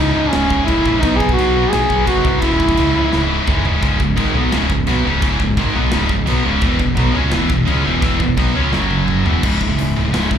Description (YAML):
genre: heavy metal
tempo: 171 BPM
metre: 4/4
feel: straight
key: C# minor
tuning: A4 = 439 Hz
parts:
  - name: mellow duduk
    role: melody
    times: 0.0-3.4 s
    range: C#4 to G#4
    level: -17 LUFS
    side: equal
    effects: slapback echo, digital delay
  - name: overdriven electric guitar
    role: riff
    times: 0.0-10.4 s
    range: C#2 to B4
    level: -23 LUFS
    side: equal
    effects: slapback echo
  - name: scooped high-gain guitar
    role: riff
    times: 0.0-10.4 s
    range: C#2 to C#4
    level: -21 LUFS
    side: left 10 dB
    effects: distortion, slapback echo
  - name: scooped high-gain guitar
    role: riff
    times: 0.0-10.4 s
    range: C#2 to C#4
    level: -21 LUFS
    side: right 10 dB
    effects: distortion
  - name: growling picked electric bass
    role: bass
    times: 0.0-10.4 s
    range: C#1 to C#2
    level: -20 LUFS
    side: equal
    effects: overdrive
  - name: tight metal drum kit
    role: drums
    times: 0.3-10.4 s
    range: china cymbal, crash cymbal, hi-hat, kick drum, snare drum, toms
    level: -21 LUFS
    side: equal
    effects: none
room: studio reverb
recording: live gig heard through the venue's PA, club reverb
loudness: -13 LUFS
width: side -8 dB against mid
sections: 0.0-3.8 A section; 3.8-9.4 B section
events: drum fill 3.1-3.8, 8.7-9.4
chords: 0.0 C#m; 1.0 B; 2.4 C#m; 3.8 C#5; 6.6 E5; 8.7 F#5; 9.3 E5; 9.4 C#m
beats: 0.33 0.68 | 1.03 1.38 1.73 2.08 | 2.43 2.78 3.13 3.48 | 3.83 4.18 4.53 4.88 | 5.23 5.58 5.93 6.28 | 6.63 6.98 7.33 7.68 | 8.03 8.38 8.73 9.08 | 9.43 9.78 10.13